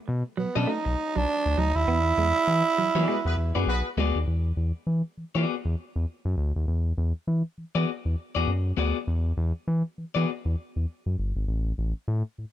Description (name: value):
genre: funk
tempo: 100 BPM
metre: 4/4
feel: swing 60% on 16ths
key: unclear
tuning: A4 = 440 Hz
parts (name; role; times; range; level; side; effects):
- semi-hollow electric guitar; riff; 0.1-4.1 s; F#3 to B3; -33 LUFS; right 5 dB; none
- round analog bass; bass; 0.1-12.5 s; G1 to E3; -25 LUFS; equal; none
- growling tenor saxophone; melody; 0.4-3.7 s; B3 to E4; -24 LUFS; right 4 dB; slapback echo
- electric guitar at the edge of break-up; accompaniment; 0.6-10.3 s; B3 to D#5; -30 LUFS; left 8 dB; none
- mellow horn section; second line; 3.1-3.9 s; B3 to B4; -33 LUFS; left 1 dB; none
room: little or no reverb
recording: none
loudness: -24 LUFS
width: side -12 dB against mid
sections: 0.0-4.3 A section; 4.3-12.5 B section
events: band accent 1.9-4.3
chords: 0.0 B7; 1.9 E9; 11.5 N.C.